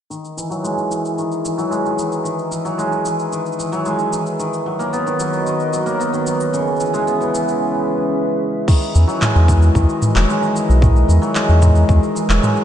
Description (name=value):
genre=folktronica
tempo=112 BPM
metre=4/4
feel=straight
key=E lydian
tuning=A4 = 440 Hz
part: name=cimbalom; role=arpeggios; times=0.1-12.6 s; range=C#3 to B3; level=-19 LUFS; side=equal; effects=low-pass filter, ping-pong delay
part: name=organic electronic drum kit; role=drums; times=0.1-12.6 s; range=crash cymbal, handclaps, shaker, toms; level=-24 LUFS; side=equal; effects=none
part: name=warbly tape-like pad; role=sustained chords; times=4.8-12.6 s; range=D#3 to E5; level=-22 LUFS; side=equal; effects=chorus, built-in reverb
part: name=electronic kick drum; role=drums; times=8.7-12.0 s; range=none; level=-16 LUFS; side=equal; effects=none
part: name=warm sub bass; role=bass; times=8.9-12.4 s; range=E1 to E2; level=-12 LUFS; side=equal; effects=none
room=moderate lush hall reverb, RT60 2.8 s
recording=dreamy mix soaked in reverb, nothing above 10.3 kHz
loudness=-15 LUFS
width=side -10 dB against mid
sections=0.1-8.7 A section; 8.7-12.6 B section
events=filter sweep on hammered dulcimer 0.1-8.7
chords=0.1 Emaj9; 4.4 Bmaj7/D#; 6.5 C#m7; 8.7 Emaj9